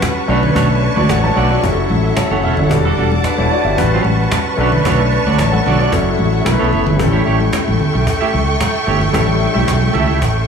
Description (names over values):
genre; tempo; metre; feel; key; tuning
disco; 112 BPM; 4/4; straight; unclear; A4 = 440 Hz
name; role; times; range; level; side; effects
clear concert grand piano; accompaniment; 0.0-10.5 s; F#3 to A5; -18 LUFS; left 5 dB; none
semi-hollow electric guitar; accompaniment; 0.0-10.4 s; G3 to E5; -21 LUFS; right 10 dB; tremolo
clear symphonic string section; sustained chords; 0.0-10.5 s; A4 to D6; -20 LUFS; right 2 dB; none
cajon; drums; 0.0-10.4 s; none; -21 LUFS; right 1 dB; none
congas; percussion; 0.0-10.1 s; none; -22 LUFS; left 2 dB; none
fingered electric bass; bass; 0.3-10.4 s; E1 to D2; -16 LUFS; right 1 dB; none
room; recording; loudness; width
light reverb, studio ambience; studio reverb; -12 LUFS; side -6 dB against mid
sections
0.0-7.0 A section; 7.0-10.5 B section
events
grand piano fill 1.9-2.7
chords
0.3 Bm9; 1.6 F#m7; 2.7 Em11; 3.8 A13; 4.6 Bm9; 5.9 F#m7; 6.5 B9sus4; 7.0 A7